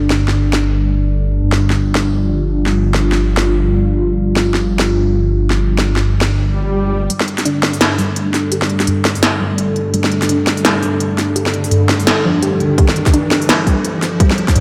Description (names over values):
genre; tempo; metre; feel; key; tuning
half-time drum and bass; 169 BPM; 4/4; swing 58% on 16ths, half-time; unclear; A4 = 440 Hz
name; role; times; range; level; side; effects
dark analog pad; sustained chords; 0.0-14.6 s; G3 to A4; -20 LUFS; equal; chorus, phaser, sidechain pumping
dark detuned saw bass; bass; 0.0-7.1 s; G1; -19 LUFS; equal; none
industrial drum kit; drums; 0.1-14.6 s; hi-hat, snare drum; -20 LUFS; equal; studio reverb
swell and riser; sound effects; 6.5-14.6 s; none; -27 LUFS; equal; none
warbly dusty pluck; arpeggios; 7.1-14.6 s; G2 to G4; -22 LUFS; equal; analog chorus, tape echo
electronic kick drum; drums; 12.8-14.5 s; none; -14 LUFS; equal; studio reverb
room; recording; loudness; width
moderate plate reverb, RT60 2.3 s; dreamy mix soaked in reverb; -15 LUFS; mono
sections
0.0-7.1 A section; 7.1-14.6 B section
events
swell 6.5-7.1; build-up 7.1-14.6; filter sweep on synth pluck 7.1-14.6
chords
0.0 G5